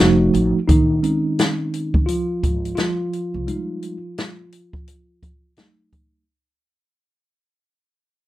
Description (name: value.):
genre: hip hop, jazz-hop.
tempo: 86 BPM.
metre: 4/4.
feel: swing 60% on 16ths.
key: unclear.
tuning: A4 = 442 Hz.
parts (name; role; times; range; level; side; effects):
tine electric piano; accompaniment; 0.0-6.2 s; Eb3 to Gb4; -19 LUFS; right 1 dB; medium stereo tremolo.
upright bass; bass; 0.0-3.5 s; F1 to Db2; -24 LUFS; equal; none.
open jazz drum kit; drums; 0.3-6.1 s; hi-hat, kick drum, snare drum; -19 LUFS; equal; none.
room: moderate small room reverb, RT60 0.5 s.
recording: rough home demo mix.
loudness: -17 LUFS.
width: side -15 dB against mid.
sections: 0.7-6.3 A section.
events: fade-out 0.7-6.3; tine electric piano solo 0.7-6.3; break 3.5-6.3.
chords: 0.0 F7b9; 0.7 Bbm11 (rootless); 3.5 Fm7; 5.6 Gbm6.